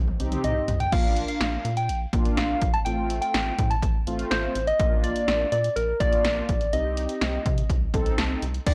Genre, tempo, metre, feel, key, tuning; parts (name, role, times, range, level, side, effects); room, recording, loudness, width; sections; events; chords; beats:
synth-pop; 124 BPM; 4/4; straight; Bb major; A4 = 439 Hz
rubbery square bass; bass; 0.0-8.7 s; A1 to C3; -32 LUFS; equal
punchy analog drum machine; drums; 0.1-8.7 s; crash cymbal, hi-hat, kick drum, snare drum, toms; -28 LUFS; equal
mellow synth brass; accompaniment; 0.2-8.7 s; A3 to A4; -33 LUFS; equal; chorus
soft struck synth lead; melody; 0.4-8.7 s; Bb4 to A5; -29 LUFS; equal; chorus
digital ambience; dry, gritty hardware recording, transformer saturation; -25 LUFS; mono
0.0-8.7 A section
drum fill 0.0-0.9
0.0 Cm; 0.9 Bb; 2.9 F/A; 4.8 Bb; 6.7 Cm
0.44 | 0.92 1.41 1.89 2.38 | 2.86 3.34 3.83 4.31 | 4.79 5.28 5.76 6.25 | 6.73 7.21 7.70 8.18 | 8.67